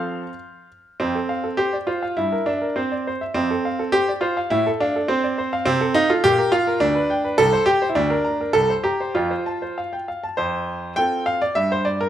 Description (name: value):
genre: classical-period piano sonatina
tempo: 102 BPM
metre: 2/4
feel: rubato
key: F major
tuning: A4 = 440 Hz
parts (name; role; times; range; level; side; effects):
- clear baby grand piano; solo; 0.0-12.1 s; C2 to F6; -19 LUFS; right 1 dB; none
room: light reverb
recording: none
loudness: -19 LUFS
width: side -11 dB against mid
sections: 0.0-1.0 A section; 1.0-10.4 A section; 10.4-12.1 A section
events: none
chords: 0.0 F; 2.2 C7/G; 3.4 F; 4.5 F/A; 5.7 F/C; 6.2 Bb5; 6.8 G/D; 7.4 C5; 8.0 Bb/D; 8.6 C5; 9.2 F; 11.6 C5/G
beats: 0.40 | 1.01 1.60 | 2.19 2.78 | 3.36 3.94 | 4.52 5.09 | 5.67 6.24 | 6.82 7.39 | 7.97 8.56 | 9.16 9.78 | 10.38 10.97 | 11.56